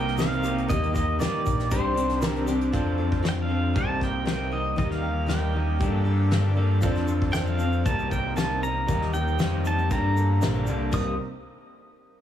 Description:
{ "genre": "folk rock and heartland rock", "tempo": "117 BPM", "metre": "4/4", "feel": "straight", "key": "C dorian", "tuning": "A4 = 439 Hz", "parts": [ { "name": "pedal steel guitar", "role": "melody", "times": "0.0-11.2 s", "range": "C5 to Eb6", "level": "-30 LUFS", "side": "equal", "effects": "none" }, { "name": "picked steel-string acoustic guitar", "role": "accompaniment", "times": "0.0-11.1 s", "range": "G2 to Bb4", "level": "-31 LUFS", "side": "left 6 dB", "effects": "none" }, { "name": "accordion", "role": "sustained chords", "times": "0.0-11.3 s", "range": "Bb3 to C5", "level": "-40 LUFS", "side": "right 2 dB", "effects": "none" }, { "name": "electric guitar through a small old amp", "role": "riff", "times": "0.0-11.1 s", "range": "G2 to Bb4", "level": "-31 LUFS", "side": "right 2 dB", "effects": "none" }, { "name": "picked electric bass", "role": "bass", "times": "0.0-11.2 s", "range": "Bb1 to Eb3", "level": "-26 LUFS", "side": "equal", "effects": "none" }, { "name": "soft brush drum kit", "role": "drums", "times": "0.1-11.0 s", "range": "crash cymbal, hi-hat, kick drum, snare drum", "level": "-30 LUFS", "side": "left 1 dB", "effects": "none" }, { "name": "dark concert grand piano", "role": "accompaniment", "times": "0.2-11.2 s", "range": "Bb3 to D5", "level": "-37 LUFS", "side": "right 5 dB", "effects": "none" }, { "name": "egg shaker", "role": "percussion", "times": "0.2-2.6, 6.8-11.2 s", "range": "none", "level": "-47 LUFS", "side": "right 9 dB", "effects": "none" } ], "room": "studio ambience", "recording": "heavily compressed radio sound, multiband compression, small room reverb", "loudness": "-22 LUFS", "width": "side -10 dB against mid", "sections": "0.0-2.7 A section; 2.7-10.9 B section; 10.9-12.2 C section", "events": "none", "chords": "0.0 Cm7; 0.7 Eb; 1.7 Cmadd9; 2.7 F6; 3.8 Cm7; 4.8 Eb; 5.8 Gmadd9; 6.8 F6; 7.9 Cm7; 8.9 Eb; 9.9 Gmadd9; 10.9 Cm7" }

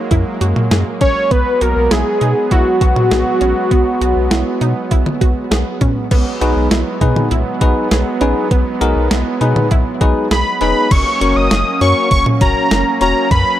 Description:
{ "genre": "synth-pop", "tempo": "100 BPM", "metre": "4/4", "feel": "straight", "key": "unclear", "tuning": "A4 = 441 Hz", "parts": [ { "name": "brassy analog pad", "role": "sustained chords", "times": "0.0-13.6 s", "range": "F#3 to C#4", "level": "-21 LUFS", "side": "right 3 dB", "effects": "chorus" }, { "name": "wide unison pluck", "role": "arpeggios", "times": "0.0-10.9 s", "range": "B3 to G#4", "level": "-24 LUFS", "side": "right 3 dB", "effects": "ping-pong delay" }, { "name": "round analog bass", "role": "bass", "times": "0.1-13.4 s", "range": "E1 to B2", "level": "-17 LUFS", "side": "equal", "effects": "none" }, { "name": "clean 12-bit digital drum machine", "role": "drums", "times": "0.1-13.5 s", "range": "crash cymbal, hi-hat, kick drum, snare drum, toms", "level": "-16 LUFS", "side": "equal", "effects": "overdrive" }, { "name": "fat analog lead", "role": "melody", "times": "1.0-5.5, 10.3-13.6 s", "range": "F#4 to D#6", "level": "-16 LUFS", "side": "equal", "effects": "ping-pong delay" }, { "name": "bell-like tine electric piano", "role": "accompaniment", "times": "6.4-13.3 s", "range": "C#4 to C#5", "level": "-19 LUFS", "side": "left 4 dB", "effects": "none" } ], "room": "light reverb, digital ambience", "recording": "none", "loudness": "-12 LUFS", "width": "side -12 dB against mid", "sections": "0.0-6.1 A section; 6.1-10.9 B section; 10.9-13.6 C section", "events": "none", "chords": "0.0 F#add9; 1.3 B5; 6.1 B6; 10.9 F#" }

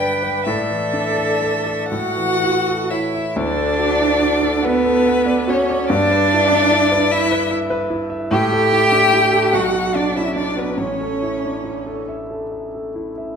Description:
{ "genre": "classical, slow romantic movement for piano quartet", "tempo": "39-51 BPM (dotted quarters)", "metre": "6/8", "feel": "rubato", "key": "D major", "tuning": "A4 = 440 Hz", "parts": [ { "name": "rich violin", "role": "melody", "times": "0.0-12.1 s", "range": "B4 to G5", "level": "-22 LUFS", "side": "left 6 dB", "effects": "none" }, { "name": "dark violin", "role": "second line", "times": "0.0-12.1 s", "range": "B3 to D5", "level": "-22 LUFS", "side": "left 2 dB", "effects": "none" }, { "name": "rich cello", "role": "second line", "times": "0.0-12.1 s", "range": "B3 to B4", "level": "-21 LUFS", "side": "right 8 dB", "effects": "none" }, { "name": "warm concert grand piano", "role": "accompaniment", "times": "0.0-13.4 s", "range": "A1 to F#5", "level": "-21 LUFS", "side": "left 1 dB", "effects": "none" } ], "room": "wet recital hall reverb, RT60 1.4 s", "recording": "none", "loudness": "-15 LUFS", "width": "side -6 dB against mid", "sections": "0.0-3.4 A section; 3.4-13.4 B section", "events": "none", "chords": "0.5 Asus4; 1.9 A; 3.4 D; 5.9 Em/G; 8.3 A5; 9.5 Bm; 10.8 A" }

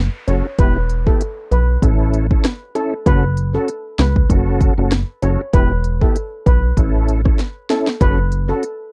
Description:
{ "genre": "dancehall", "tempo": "97 BPM", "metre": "4/4", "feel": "swing 56% on 16ths", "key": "F# phrygian", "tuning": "A4 = 436 Hz", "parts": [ { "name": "plucky analog bass", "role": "bass", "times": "0.0-8.5 s", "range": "E1 to C#2", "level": "-19 LUFS", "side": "equal", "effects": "none" }, { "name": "downlifter", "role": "sound effects", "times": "0.0-3.1 s", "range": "none", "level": "-46 LUFS", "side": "equal", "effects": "none" }, { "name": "steel pan", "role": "melody", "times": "0.3-8.6 s", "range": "A4 to C#5", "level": "-26 LUFS", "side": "equal", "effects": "delay" }, { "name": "tonewheel organ", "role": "accompaniment", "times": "0.3-8.6 s", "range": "B3 to A4", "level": "-24 LUFS", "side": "equal", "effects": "overdrive, chorus vibrato, slow rotary speaker" }, { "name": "afro-pop drum kit", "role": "drums", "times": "0.3-8.8 s", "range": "hi-hat, kick drum, rim click, snare drum", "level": "-18 LUFS", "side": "equal", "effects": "vintage 12-bit sampler grit" } ], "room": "little or no reverb", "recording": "dark, warm production", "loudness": "-17 LUFS", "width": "mono", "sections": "0.0-8.9 A section", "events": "drum fill 7.4-8.0", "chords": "0.0 F#m; 0.6 Em; 1.8 A; 3.1 F#m; 5.5 Em; 6.8 A; 8.0 F#m" }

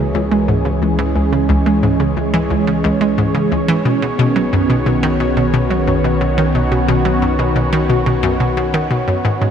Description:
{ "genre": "ambient, sequencer-driven space music", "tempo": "89 BPM", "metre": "4/4", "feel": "straight", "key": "unclear", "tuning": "A4 = 440 Hz", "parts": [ { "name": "lush unison pad", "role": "sustained chords", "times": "0.0-9.5 s", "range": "D#3 to C#5", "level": "-16 LUFS", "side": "right 1 dB", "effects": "chorus, phaser, shimmer reverb" }, { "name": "hollow square pluck", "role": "riff", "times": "0.0-9.5 s", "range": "C#2 to G#3", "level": "-17 LUFS", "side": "equal", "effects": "chorus, ping-pong delay, shimmer reverb" }, { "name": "round analog bass", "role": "bass", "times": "0.0-9.5 s", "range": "G#1 to C#2", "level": "-22 LUFS", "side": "equal", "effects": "none" } ], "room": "moderate plate reverb, RT60 3.0 s", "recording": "none", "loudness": "-13 LUFS", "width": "side -8 dB against mid", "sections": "0.0-9.5 A section", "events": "none", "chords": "0.0 C#m; 3.9 Badd9" }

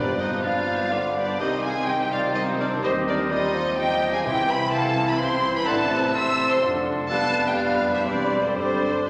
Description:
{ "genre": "quick classical-period movement for symphony orchestra", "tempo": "126 BPM", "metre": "3/4", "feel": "rubato", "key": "C minor, C major from 4.3 s", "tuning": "A4 = 440 Hz", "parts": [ { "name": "rich chamber violin section", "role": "melody", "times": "0.0-9.1 s", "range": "C5 to E6", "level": "-28 LUFS", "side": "equal", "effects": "none" }, { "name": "clear clarinet", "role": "second line", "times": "0.0-9.1 s", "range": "D4 to G4", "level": "-36 LUFS", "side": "equal", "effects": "none" }, { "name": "rich chamber violin section", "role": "second line", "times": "0.0-9.1 s", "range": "B3 to E5", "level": "-33 LUFS", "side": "equal", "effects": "none" }, { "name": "silver concert flute", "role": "second line", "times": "0.0-9.1 s", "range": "G4 to C6", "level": "-33 LUFS", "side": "equal", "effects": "none" }, { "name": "warm oboe", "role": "second line", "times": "0.0-9.1 s", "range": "A4 to Eb5", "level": "-34 LUFS", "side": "equal", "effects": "none" }, { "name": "mellow bassoon", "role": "accompaniment", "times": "0.0-9.1 s", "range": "C3 to G3", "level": "-30 LUFS", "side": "equal", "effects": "none" }, { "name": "rich studio viola section", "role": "accompaniment", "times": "0.0-9.1 s", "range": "E3 to D4", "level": "-33 LUFS", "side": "equal", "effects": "none" }, { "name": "warm French horn section", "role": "sustained chords", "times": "0.0-9.1 s", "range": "G3 to G4", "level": "-36 LUFS", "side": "equal", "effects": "none" }, { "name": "warm studio cello section", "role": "bass", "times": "0.0-9.1 s", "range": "E2 to Eb3", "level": "-38 LUFS", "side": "equal", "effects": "none" }, { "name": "warm studio double bass section", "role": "bass", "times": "0.0-9.1 s", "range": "E1 to Eb2", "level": "-41 LUFS", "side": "equal", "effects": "none" }, { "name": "timpani", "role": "percussion", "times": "0.0-0.6, 4.3-4.9 s", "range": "G2 to C3", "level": "-38 LUFS", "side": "equal", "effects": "none" } ], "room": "wet scoring stage reverb, RT60 2.0 s", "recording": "none", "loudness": "-23 LUFS", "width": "mono", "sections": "0.0-9.1 A section", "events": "none", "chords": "0.0 G7; 1.4 Cm; 2.8 Cm/Eb; 4.3 C; 5.7 Am; 6.6 Dm/F; 7.1 G7/F; 8.1 C/E; 8.6 G5" }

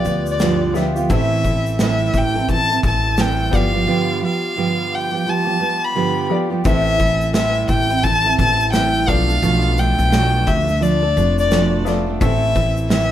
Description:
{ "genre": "acoustic pop", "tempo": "86 BPM", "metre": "4/4", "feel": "swing 60% on 16ths", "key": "A minor", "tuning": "A4 = 438 Hz", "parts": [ { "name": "warm violin", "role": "melody", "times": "0.0-13.1 s", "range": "D5 to B5", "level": "-20 LUFS", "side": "left 2 dB", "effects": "plate reverb" }, { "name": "bright upright piano", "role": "accompaniment", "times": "0.0-13.1 s", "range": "B3 to E5", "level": "-28 LUFS", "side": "left 6 dB", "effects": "none" }, { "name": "fingerpicked steel-string acoustic guitar", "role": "accompaniment", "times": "0.0-13.1 s", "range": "G2 to A4", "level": "-20 LUFS", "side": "right 5 dB", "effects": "none" }, { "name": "loose indie drum kit", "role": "drums", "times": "0.0-13.1 s", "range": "kick drum, shaker, snare drum", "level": "-22 LUFS", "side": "equal", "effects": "none" }, { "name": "upright bass", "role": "bass", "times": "0.1-13.1 s", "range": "F1 to D2", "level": "-20 LUFS", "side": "left 1 dB", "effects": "none" } ], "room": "moderate studio reverb, RT60 0.6 s", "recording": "none", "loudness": "-15 LUFS", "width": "side -11 dB against mid", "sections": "0.0-6.7 A section; 6.7-13.1 A section", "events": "break 3.9-6.7", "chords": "0.0 G7; 1.1 Am; 3.5 G7; 6.7 Am; 9.1 Bm7b5; 12.2 Am" }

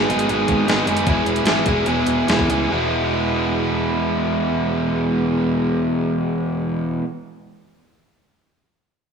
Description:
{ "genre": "indie rock", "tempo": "137-160 BPM", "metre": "4/4", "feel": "straight", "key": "E major", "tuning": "A4 = 439 Hz", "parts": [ { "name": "overdriven electric guitar", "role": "riff", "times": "0.0-7.1 s", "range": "E2 to G#4", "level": "-18 LUFS", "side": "equal", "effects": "none" }, { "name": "picked electric bass", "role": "bass", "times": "0.0-7.0 s", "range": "E1 to C#2", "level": "-28 LUFS", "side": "equal", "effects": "none" }, { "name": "detuned 8-bit digital drum machine", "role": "drums", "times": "0.1-2.6 s", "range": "hi-hat, kick drum, snare drum", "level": "-22 LUFS", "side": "right 1 dB", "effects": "none" } ], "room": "wet lush hall reverb, RT60 1.7 s", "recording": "rough home demo mix", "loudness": "-17 LUFS", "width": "side -6 dB against mid", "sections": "0.0-2.7 A section; 2.7-6.2 B section", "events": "slowing down 0.0-2.7", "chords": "0.0 G#m7; 1.1 E" }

